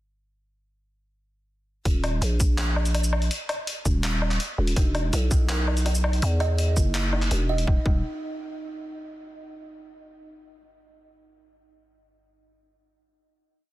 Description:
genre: half-time drum and bass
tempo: 165 BPM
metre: 4/4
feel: half-time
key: Eb phrygian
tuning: A4 = 440 Hz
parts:
  - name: growling 808-style bass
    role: bass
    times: 1.9-8.0 s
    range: Eb1 to E2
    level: -23 LUFS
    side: equal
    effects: none
  - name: boom bap sampler-style drum kit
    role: drums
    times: 1.9-7.7 s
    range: handclaps, hi-hat, shaker, woodblock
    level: -29 LUFS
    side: left 1 dB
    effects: none
  - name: electronic kick drum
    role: drums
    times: 1.9-7.9 s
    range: none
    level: -22 LUFS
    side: equal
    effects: none
  - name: kalimba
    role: arpeggios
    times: 4.8-8.0 s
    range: Eb4 to Eb5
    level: -34 LUFS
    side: right 3 dB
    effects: tape echo
room: little or no reverb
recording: dense, heavily limited modern master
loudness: -22 LUFS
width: side -16 dB against mid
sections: 1.9-7.7 drop; 7.7-9.1 final note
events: drop 1.9-7.7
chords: 1.9 Eb5; 4.8 E5; 7.7 N.C.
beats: | 1.86 2.22 2.58 2.95 | 3.31 3.67 4.04 4.40 | 4.76 5.13 5.49 5.86 | 6.22 6.58 6.95 7.31 | 7.67

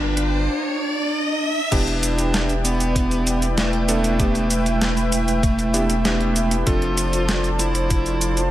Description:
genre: synthwave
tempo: 97 BPM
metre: 4/4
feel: straight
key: E phrygian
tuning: A4 = 445 Hz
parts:
  - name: smooth overdriven lead guitar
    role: melody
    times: 0.0-8.4 s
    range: A3 to F4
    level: -24 LUFS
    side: right 1 dB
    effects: ping-pong delay, shimmer reverb
  - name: warm analog pad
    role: sustained chords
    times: 0.0-8.5 s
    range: F3 to A5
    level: -26 LUFS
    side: left 1 dB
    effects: chorus, sidechain pumping, shimmer reverb
  - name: round analog bass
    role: bass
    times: 0.0-8.5 s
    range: E1 to G1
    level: -23 LUFS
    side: equal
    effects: none
  - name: riser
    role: sound effects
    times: 0.0-1.7 s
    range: none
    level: -25 LUFS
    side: equal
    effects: none
  - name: detuned 8-bit digital drum machine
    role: drums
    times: 0.2-8.5 s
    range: cabasa, crash cymbal, hi-hat, snare drum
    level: -25 LUFS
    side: equal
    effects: none
  - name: warm electric grand piano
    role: stabs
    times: 1.7-8.5 s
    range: F3 to A4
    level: -28 LUFS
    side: right 1 dB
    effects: tape echo, shimmer reverb
  - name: electronic kick drum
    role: drums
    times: 1.7-8.0 s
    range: none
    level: -22 LUFS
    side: equal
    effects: none
room: light reverb, digital ambience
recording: none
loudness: -18 LUFS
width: side -13 dB against mid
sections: 0.0-1.7 A section; 1.7-8.5 B section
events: riser 0.0-1.7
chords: 0.0 G7; 1.7 Em7; 6.7 Dm7/F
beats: 0.48 1.10 | 1.72 2.34 2.96 3.58 | 4.19 4.81 5.43 6.05 | 6.67 7.29 7.91

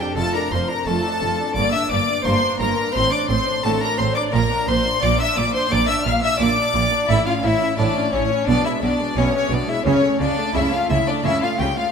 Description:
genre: classical, baroque-style concerto movement with solo episodes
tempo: 87 BPM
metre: 4/4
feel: straight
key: D minor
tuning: A4 = 440 Hz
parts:
  - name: rich chamber violin section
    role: melody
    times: 0.0-11.9 s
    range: C#5 to F6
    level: -26 LUFS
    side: left 4 dB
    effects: none
  - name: rich violin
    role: melody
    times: 0.0-11.9 s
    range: C#5 to F6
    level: -24 LUFS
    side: left 3 dB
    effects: none
  - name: rich symphonic violin section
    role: second line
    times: 0.0-11.8 s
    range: C#4 to F5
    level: -23 LUFS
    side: left 3 dB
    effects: none
  - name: harpsichord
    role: accompaniment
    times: 0.0-11.9 s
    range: F2 to A4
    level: -29 LUFS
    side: right 1 dB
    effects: none
  - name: warm studio viola section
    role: accompaniment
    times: 0.0-11.9 s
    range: G#3 to F4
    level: -26 LUFS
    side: right 2 dB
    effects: none
  - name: rich studio cello section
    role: bass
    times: 0.2-11.7 s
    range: F2 to C#3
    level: -26 LUFS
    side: right 4 dB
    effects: none
  - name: rich studio double bass section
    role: bass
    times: 0.2-11.7 s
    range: F1 to C#2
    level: -26 LUFS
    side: right 4 dB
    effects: none
room: moderate concert hall reverb, RT60 2.1 s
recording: none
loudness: -17 LUFS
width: side -6 dB against mid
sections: 0.0-11.9 A section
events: none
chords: 0.0 Dm/F; 1.6 Gm; 2.9 D7/A; 4.3 Gm/Bb; 7.1 A; 8.5 E/B; 9.9 A/C#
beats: 0.17 0.87 | 1.56 2.25 2.94 3.64 | 4.33 5.02 5.71 6.40 | 7.09 7.78 8.47 9.16 | 9.86 10.55 11.25

